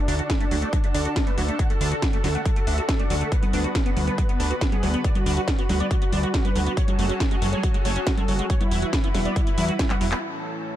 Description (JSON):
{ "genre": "uplifting trance", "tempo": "139 BPM", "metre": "4/4", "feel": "straight", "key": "unclear", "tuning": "A4 = 442 Hz", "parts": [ { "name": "supersaw chords", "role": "melody", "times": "0.0-10.2 s", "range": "B3 to F#5", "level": "-30 LUFS", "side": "right 1 dB", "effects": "sidechain pumping, low-pass filter, tape echo" }, { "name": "lush unison pad", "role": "sustained chords", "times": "0.0-10.8 s", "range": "A2 to B4", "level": "-32 LUFS", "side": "equal", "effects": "chorus, sidechain pumping" }, { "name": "liquid acid bass", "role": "arpeggios", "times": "0.1-10.2 s", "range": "F#3 to F#4", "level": "-33 LUFS", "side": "right 2 dB", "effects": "analog chorus, sidechain pumping, tape echo" }, { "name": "fat analog bass", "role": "bass", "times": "0.1-10.1 s", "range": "E1 to E2", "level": "-25 LUFS", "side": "equal", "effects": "sidechain pumping" }, { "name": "techno drum kit", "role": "drums", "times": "0.1-10.2 s", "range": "congas, handclaps, hi-hat, snare drum", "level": "-28 LUFS", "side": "equal", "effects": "low-pass filter on snare, low-pass filter on hats, low-pass filter on cymbals, low-pass filter on perc, low-pass filter on room" }, { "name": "electronic kick drum", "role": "drums", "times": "0.3-9.9 s", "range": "none", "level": "-23 LUFS", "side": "equal", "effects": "none" } ], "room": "digital ambience", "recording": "dark, warm production", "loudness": "-20 LUFS", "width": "side -12 dB against mid", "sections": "0.0-10.2 A section", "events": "drum fill 9.9-10.2; band accent 10.1", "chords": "0.0 D; 3.3 Bm/D; 6.8 F#madd9; 8.5 Esus2; 10.2 A" }